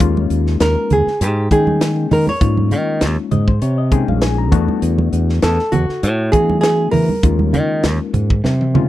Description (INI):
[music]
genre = electric jazz fusion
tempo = 100 BPM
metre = 4/4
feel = swing 54% on 16ths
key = unclear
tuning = A4 = 440 Hz
[part]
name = overdriven reed electric piano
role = accompaniment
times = 0.0-8.9 s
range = Ab3 to Bb5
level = -21 LUFS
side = left 10 dB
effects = phaser
[part]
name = fingered electric bass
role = bass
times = 0.0-8.9 s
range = Bb1 to E3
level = -16 LUFS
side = equal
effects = none
[part]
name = crisp fusion drum kit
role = drums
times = 0.0-8.9 s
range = hi-hat, kick drum, snare drum, toms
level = -19 LUFS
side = equal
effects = none
[part]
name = congas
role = percussion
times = 0.2-8.9 s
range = none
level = -21 LUFS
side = right 4 dB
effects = none
[part]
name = flamenco guitar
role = melody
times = 0.6-8.9 s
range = F#4 to Db5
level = -18 LUFS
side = right 1 dB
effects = slapback echo
[sound]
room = little or no reverb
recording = none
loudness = -13 LUFS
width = side -14 dB against mid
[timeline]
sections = 0.0-8.9 A section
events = reed electric piano fill 3.0-4.8; drum fill 8.4-8.9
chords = 0.0 Eb9sus4; 4.5 E9sus4; 7.2 Eb9sus4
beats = | 0.01 0.61 1.21 1.81 | 2.41 3.02 3.62 4.22 | 4.82 5.43 6.03 6.63 | 7.24 7.84 8.44